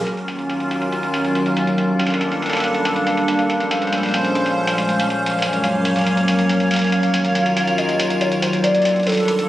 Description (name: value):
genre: IDM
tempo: 140 BPM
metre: 4/4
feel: straight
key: Eb dorian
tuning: A4 = 440 Hz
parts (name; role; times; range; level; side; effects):
- icy glass pad; sustained chords; 0.0-9.5 s; Eb2 to Db5; -18 LUFS; equal; chorus, built-in reverb
- electronic hi-hat; drums; 0.1-9.5 s; none; -25 LUFS; equal; low-pass filter on hats, low-pass filter on snare
- pulsing gated texture; texture; 0.8-9.5 s; F5; -28 LUFS; equal; chorus, built-in reverb
- warbly nostalgic lead; melody; 6.9-9.5 s; A4 to F5; -20 LUFS; equal; wide subtle chorus, cassette tape, digital delay
room: moderate plate reverb, RT60 1.2 s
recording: recorded on a phone in the room, studio ambience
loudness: -16 LUFS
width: side -14 dB against mid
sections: 0.1-9.5 A section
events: filter sweep on ambient pad 0.1-9.5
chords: 0.1 Ebm7; 1.8 Gmadd9; 3.5 Bbm7; 5.2 Gb; 6.9 Ebm7; 8.6 Gmadd9